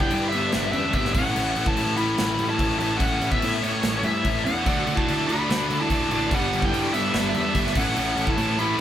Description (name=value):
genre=hard rock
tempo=145 BPM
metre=4/4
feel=straight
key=A mixolydian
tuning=A4 = 440 Hz
part: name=high-gain lead guitar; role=melody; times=0.0-8.8 s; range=C#5 to B5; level=-27 LUFS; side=left 1 dB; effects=distortion
part: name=lightly driven lead guitar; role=second line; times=0.0-8.8 s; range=A3 to F#4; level=-30 LUFS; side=right 1 dB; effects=none
part: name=bright tonewheel organ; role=sustained chords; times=0.0-8.8 s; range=D4 to B5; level=-37 LUFS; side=equal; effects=none
part: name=cranked stack guitar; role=riff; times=0.0-8.8 s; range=G2 to D4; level=-30 LUFS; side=left 6 dB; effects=overdrive, tremolo
part: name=heavy high-gain guitar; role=riff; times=0.0-8.8 s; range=G2 to E4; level=-29 LUFS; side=right 1 dB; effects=distortion
part: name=fuzz picked electric bass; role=bass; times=0.0-8.8 s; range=G1 to A2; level=-30 LUFS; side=equal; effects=overdrive
part: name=tight metal drum kit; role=drums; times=0.0-8.8 s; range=crash cymbal, kick drum, snare drum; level=-27 LUFS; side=equal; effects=none
part: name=high-gain distorted guitar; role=riff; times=4.7-8.8 s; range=G2 to D4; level=-29 LUFS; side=right 6 dB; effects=distortion
room=moderate studio reverb, RT60 0.8 s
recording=band playing live in one room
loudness=-20 LUFS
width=side -10 dB against mid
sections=0.0-8.8 A section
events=none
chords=0.0 G; 1.2 A; 4.7 D; 6.3 G; 7.8 A